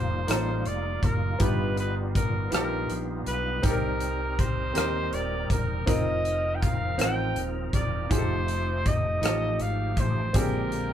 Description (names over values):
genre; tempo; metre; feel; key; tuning
slow gospel; 54 BPM (dotted quarters); 6/8; straight; unclear; A4 = 440 Hz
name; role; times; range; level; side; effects
clear trumpet; melody; 0.0-10.9 s; Bb4 to G5; -31 LUFS; equal; none
clear baby grand piano; accompaniment; 0.0-10.9 s; G2 to Bb4; -32 LUFS; equal; none
bright tonewheel organ; sustained chords; 0.0-10.9 s; D3 to G5; -36 LUFS; equal; fast rotary speaker, chorus vibrato
fingered electric bass; bass; 0.0-10.9 s; Eb1 to Eb2; -30 LUFS; equal; none
modern studio drum kit; drums; 0.3-10.9 s; hi-hat, kick drum, rim click; -28 LUFS; equal; none
room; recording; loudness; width
moderate studio reverb, RT60 0.5 s; band playing live in one room; -24 LUFS; side -10 dB against mid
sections
0.0-10.9 A section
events
none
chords
0.0 F9sus4; 1.4 G7alt; 3.6 Cm7; 5.9 F7sus4; 8.1 F9; 10.3 Bb13